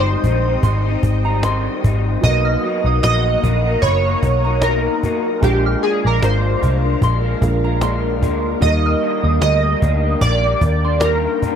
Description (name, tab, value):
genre	indie pop, bedroom pop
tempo	75 BPM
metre	4/4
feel	swing 55% on 16ths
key	Eb major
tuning	A4 = 438 Hz
part	chorused retro synth keys	melody	0.0-11.6 s	G4 to D#5	-19 LUFS	right 2 dB	ensemble chorus, slapback echo
part	soft synth bell	second line	0.0-11.0 s	Bb5 to F6	-28 LUFS	right 2 dB	phaser, wide subtle chorus, slapback echo
part	electric guitar through a small old amp	accompaniment	0.0-11.6 s	Ab2 to Eb4	-24 LUFS	left 7 dB	analog chorus, warbly pitch drift
part	warm upright piano	accompaniment	0.0-11.6 s	F#3 to A#4	-28 LUFS	right 6 dB	none
part	string machine, cellos	sustained chords	0.0-11.6 s	A#4 to Eb6	-26 LUFS	right 1 dB	ensemble chorus
part	vintage muted picked electric bass	bass	0.0-11.3 s	F#1 to Eb2	-18 LUFS	equal	none
part	cajon	drums	0.2-11.6 s	none	-21 LUFS	equal	none
room	digital ambience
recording	dry, close 1970s-style studio recording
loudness	-14 LUFS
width	side -8 dB against mid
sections	0.0-11.6 A section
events	none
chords	0.0 Abmaj7; 2.2 Bmaj7; 5.4 Bb7; 8.6 Ebmaj7